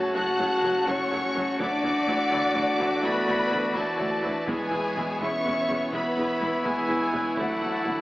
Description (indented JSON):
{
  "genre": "cinematic, epic orchestral film score",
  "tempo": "83 BPM (dotted quarters)",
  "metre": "12/8",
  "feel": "straight",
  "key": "unclear",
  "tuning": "A4 = 440 Hz",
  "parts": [
    { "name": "rich symphonic violin section", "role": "melody", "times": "0.0-8.0 s", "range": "F#5 to F#6", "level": "-32 LUFS", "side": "left 2 dB", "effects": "none" },
    { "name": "mellow hollow silver concert flute", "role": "second line", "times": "0.0-8.0 s", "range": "A4 to A5", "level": "-30 LUFS", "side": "equal", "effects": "none" },
    { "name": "rich symphonic violin section", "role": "second line", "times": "0.0-8.0 s", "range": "F#4 to F#5", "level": "-34 LUFS", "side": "left 2 dB", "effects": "none" },
    { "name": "mellow French horn section", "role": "sustained chords", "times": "0.0-8.0 s", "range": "F#3 to F#4", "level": "-31 LUFS", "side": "left 1 dB", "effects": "none" },
    { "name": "pipe organ, trumpet", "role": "sustained chords", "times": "0.0-8.0 s", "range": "A3 to F#5", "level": "-33 LUFS", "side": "equal", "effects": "none" },
    { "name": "warm trombone section", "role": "sustained chords", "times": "0.0-8.0 s", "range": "C#3 to B3", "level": "-34 LUFS", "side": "right 1 dB", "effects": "none" },
    { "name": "mellow trumpet section", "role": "stabs", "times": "0.0-8.0 s", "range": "E4 to F#4", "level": "-31 LUFS", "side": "equal", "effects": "none" },
    { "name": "rich symphonic viola section", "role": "accompaniment", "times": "0.1-7.9 s", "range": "F#3 to F#4", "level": "-35 LUFS", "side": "equal", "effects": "none" },
    { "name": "clear symphonic double bass section", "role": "bass", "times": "0.2-7.9 s", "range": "E1 to D2", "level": "-40 LUFS", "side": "right 1 dB", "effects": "none" },
    { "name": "rich symphonic cello section", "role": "bass", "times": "0.2-7.9 s", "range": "D2 to F#2", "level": "-37 LUFS", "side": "right 1 dB", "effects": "none" },
    { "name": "taiko ensemble", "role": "drums", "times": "0.4-8.0 s", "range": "none", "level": "-44 LUFS", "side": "equal", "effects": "none" },
    { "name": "cymbal swell", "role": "sound effects", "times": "7.4-8.0 s", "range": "none", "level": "barely audible", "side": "none", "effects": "none" }
  ],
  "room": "wet recital hall reverb, RT60 1.5 s",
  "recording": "AM radio sound",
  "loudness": "-23 LUFS",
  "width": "side -17 dB against mid",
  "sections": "0.0-8.0 A section",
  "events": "none",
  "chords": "0.0 F#m; 1.6 Dadd9; 4.5 E6; 7.4 Dadd9"
}